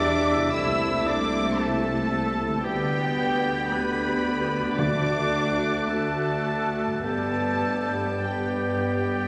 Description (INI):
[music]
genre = classical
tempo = 49-59 BPM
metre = 4/4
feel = rubato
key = G major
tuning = A4 = 441 Hz
[part]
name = warm chamber violin section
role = melody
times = 0.0-9.3 s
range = G5 to E6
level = -36 LUFS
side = equal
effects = none
[part]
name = bright clarinet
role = second line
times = 0.0-9.3 s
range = D5 to E5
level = -37 LUFS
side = equal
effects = none
[part]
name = bright concert flute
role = second line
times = 0.0-9.3 s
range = E6 to G6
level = -37 LUFS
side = equal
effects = none
[part]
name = clear oboe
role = second line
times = 0.0-9.3 s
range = G4 to E5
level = -35 LUFS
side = equal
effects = none
[part]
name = warm chamber violin section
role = second line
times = 0.0-9.3 s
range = G5 to E6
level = -37 LUFS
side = equal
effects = none
[part]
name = dark bassoon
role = accompaniment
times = 0.0-9.3 s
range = G3 to B3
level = -36 LUFS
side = equal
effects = none
[part]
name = warm chamber viola section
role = accompaniment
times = 0.0-9.3 s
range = G3 to G4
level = -34 LUFS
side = equal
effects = none
[part]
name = mellow French horn section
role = sustained chords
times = 0.0-9.3 s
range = G3 to G4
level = -36 LUFS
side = equal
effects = none
[part]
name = concert harp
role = arpeggios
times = 0.0-9.3 s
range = G2 to E5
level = -40 LUFS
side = equal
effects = none
[part]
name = dark chamber cello section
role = bass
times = 0.0-9.3 s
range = G3 to E4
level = -34 LUFS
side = equal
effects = none
[part]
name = dark symphonic double bass section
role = bass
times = 0.0-9.3 s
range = C2 to G2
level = -35 LUFS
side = equal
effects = none
[part]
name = warm tuba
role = bass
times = 0.0-9.3 s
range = E1 to D2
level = -36 LUFS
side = equal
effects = none
[part]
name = timpani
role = percussion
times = 4.8-6.4 s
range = D3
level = -34 LUFS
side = equal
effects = none
[sound]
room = wet concert hall reverb, RT60 1.9 s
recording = none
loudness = -25 LUFS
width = mono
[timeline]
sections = 0.0-9.3 A section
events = none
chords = 0.0 Em; 0.5 Am/C; 2.7 G/D; 7.0 G